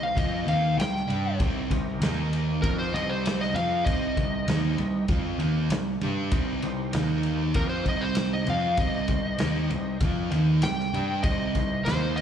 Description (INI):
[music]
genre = blues rock power trio and southern rock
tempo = 97 BPM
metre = 4/4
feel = straight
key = C minor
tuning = A4 = 439 Hz
[part]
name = overdriven slide guitar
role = melody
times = 0.0-12.2 s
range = Bb4 to G5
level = -29 LUFS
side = left 2 dB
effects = slapback echo
[part]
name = overdriven tonewheel organ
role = sustained chords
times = 0.0-12.2 s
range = Bb3 to Eb5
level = -40 LUFS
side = right 4 dB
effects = slow rotary speaker, chorus vibrato
[part]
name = sludgy distorted guitar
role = riff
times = 0.0-12.2 s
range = C3 to G4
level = -28 LUFS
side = right 1 dB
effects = overdrive, slapback echo
[part]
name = growling picked electric bass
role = bass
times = 0.0-12.2 s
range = C2 to G2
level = -29 LUFS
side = equal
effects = overdrive
[part]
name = vintage drum kit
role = drums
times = 0.2-12.2 s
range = kick drum, ride cymbal, snare drum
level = -30 LUFS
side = equal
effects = none
[sound]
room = studio reverb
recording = live gig heard through the venue's PA, club reverb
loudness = -23 LUFS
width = side -8 dB against mid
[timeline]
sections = 0.0-12.2 A section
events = none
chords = 0.0 Cm; 2.0 Eb5; 2.6 Cm; 6.9 Eb5; 7.6 Cm